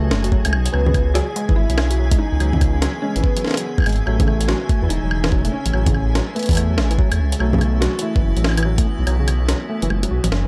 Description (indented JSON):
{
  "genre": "IDM",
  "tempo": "144 BPM",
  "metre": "4/4",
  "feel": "swing 62% on 16ths",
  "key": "unclear",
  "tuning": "A4 = 440 Hz",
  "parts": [
    { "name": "felt-muted upright piano", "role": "melody", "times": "0.0-10.3 s", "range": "A3 to G#4", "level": "-29 LUFS", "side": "equal", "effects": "dub echo" },
    { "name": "icy glass pad", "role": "sustained chords", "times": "0.0-10.5 s", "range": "C#3 to G#4", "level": "-34 LUFS", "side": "equal", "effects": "chorus, built-in reverb" },
    { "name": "tine electric piano", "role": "arpeggios", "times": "0.0-10.5 s", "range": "C#3 to F#4", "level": "-30 LUFS", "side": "equal", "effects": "overdrive" },
    { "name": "dark detuned saw bass", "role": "bass", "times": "0.0-10.5 s", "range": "E1 to E2", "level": "-22 LUFS", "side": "equal", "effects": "tube saturation" },
    { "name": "flickering grainy texture", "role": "texture", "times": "0.0-10.5 s", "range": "G#5", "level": "-38 LUFS", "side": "equal", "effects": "built-in reverb" },
    { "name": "jungle sampler-style drum kit", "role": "drums", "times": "0.1-10.4 s", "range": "congas, hi-hat, snare drum, toms, woodblock", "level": "-26 LUFS", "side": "equal", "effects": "none" },
    { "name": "electronic kick drum", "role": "drums", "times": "0.3-8.8 s", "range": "none", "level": "-21 LUFS", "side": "equal", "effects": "none" }
  ],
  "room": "digital ambience",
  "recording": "dark, warm production",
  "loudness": "-19 LUFS",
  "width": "mono",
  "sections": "0.0-10.5 A section",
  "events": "kick drops out 9.1-10.5; drum fill 9.9-10.5",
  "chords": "0.0 F#m69; 0.7 C#m7; 4.1 Amaj7; 7.4 B7sus4"
}